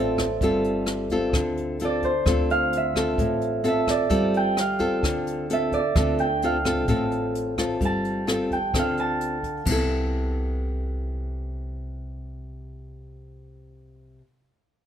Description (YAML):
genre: bossa nova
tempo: 130 BPM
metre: 4/4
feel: straight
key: C major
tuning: A4 = 440 Hz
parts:
  - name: concert harp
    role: melody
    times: 0.0-10.5 s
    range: A4 to A5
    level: -26 LUFS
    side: right 4 dB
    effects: none
  - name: nylon-string guitar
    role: accompaniment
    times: 0.0-14.3 s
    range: A2 to A4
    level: -25 LUFS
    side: left 1 dB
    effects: none
  - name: upright bass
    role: bass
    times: 0.0-14.2 s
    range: G1 to D2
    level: -30 LUFS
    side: equal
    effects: none
  - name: jazz brush drum kit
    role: drums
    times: 0.2-9.8 s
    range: crash cymbal, hi-hat, kick drum, rim click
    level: -29 LUFS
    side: equal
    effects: none
room: light reverb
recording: none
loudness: -22 LUFS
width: side -9 dB against mid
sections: 0.0-9.7 A section; 9.7-13.4 B section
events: harp solo 0.0-9.7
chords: 0.4 G9sus4; 2.3 Dm7; 4.1 G9sus4; 6.0 Dm7; 7.8 G9sus4; 9.7 C6